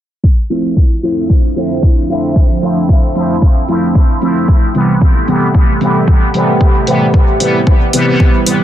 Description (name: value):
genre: dub techno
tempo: 113 BPM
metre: 4/4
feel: swing 55% on 16ths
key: D dorian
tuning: A4 = 440 Hz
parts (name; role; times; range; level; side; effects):
- dark analog pad; sustained chords; 1.1-8.6 s; F3 to C5; -20 LUFS; equal; chorus, phaser, sidechain pumping
- electronic kick drum; drums; 0.2-8.3 s; none; -9 LUFS; equal; none
- resonant sweep polysynth; stabs; 0.5-8.6 s; C3 to E4; -13 LUFS; equal; chorus, phaser, sidechain pumping, dub echo
- electronic hi-hat; drums; 0.5-8.6 s; none; -16 LUFS; equal; none
room: little or no reverb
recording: dense, heavily limited modern master, low-pass filter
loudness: -9 LUFS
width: side -12 dB against mid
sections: 0.2-8.6 A section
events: filter sweep on analog polysynth 0.2-8.6; filter sweep 0.2-8.6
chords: 0.2 Dm7; 4.5 Am7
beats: | 0.23 0.77 1.30 1.83 | 2.36 2.89 3.42 3.95 | 4.48 5.01 5.54 6.08 | 6.61 7.14 7.67 8.20